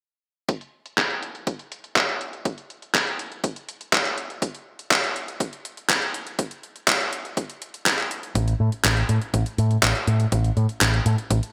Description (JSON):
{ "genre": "italo disco", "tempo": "122 BPM", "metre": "4/4", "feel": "straight", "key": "unclear", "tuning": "A4 = 440 Hz", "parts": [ { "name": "electronic kick drum", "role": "drums", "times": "0.5-11.4 s", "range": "none", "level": "-30 LUFS", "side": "equal", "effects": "high-pass filter on kick" }, { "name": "gated 80s digital drum machine", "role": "drums", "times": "0.5-11.5 s", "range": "handclaps, hi-hat", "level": "-25 LUFS", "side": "equal", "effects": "gated reverb, overdrive, low-pass filter on hats, low-pass filter on snare, low-pass filter on room" }, { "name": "picked electric bass with an envelope filter", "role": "bass", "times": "8.4-11.4 s", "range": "A1 to A2", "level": "-23 LUFS", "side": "equal", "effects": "none" } ], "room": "moderate plate reverb, RT60 2.2 s", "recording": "bright 1980s-style digital production", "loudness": "-24 LUFS", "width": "mono", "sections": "0.5-11.5 A section", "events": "none", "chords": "none", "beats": "| 0.49 0.98 1.47 1.96 | 2.45 2.94 3.44 3.93 | 4.42 4.91 5.40 5.89 | 6.39 6.88 7.37 7.86 | 8.35 8.85 9.34 9.83 | 10.32 10.81 11.30" }